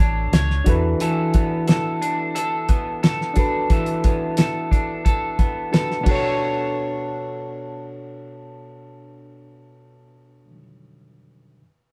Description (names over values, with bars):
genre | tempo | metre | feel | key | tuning
indie pop, bedroom pop | 89 BPM | 4/4 | straight | B minor | A4 = 440 Hz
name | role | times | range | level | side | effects
bright reed electric piano | accompaniment | 0.0-11.6 s | B2 to C#5 | -31 LUFS | equal | overdrive
electric guitar at the edge of break-up | accompaniment | 0.0-10.6 s | E3 to C#5 | -27 LUFS | equal | vibrato effect
vintage muted fingered electric bass | bass | 0.0-0.9 s | A1 to E2 | -24 LUFS | equal | none
cloth-damped thuddy drum kit | drums | 0.3-6.2 s | hi-hat, kick drum, ride cymbal, snare drum | -20 LUFS | equal | none
room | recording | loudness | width
moderate studio reverb, RT60 0.5 s | band playing live in one room | -21 LUFS | mono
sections
0.0-6.4 A section; 6.4-9.1 B section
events
none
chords
0.0 Bm9; 0.7 E7sus4; 6.1 Bm9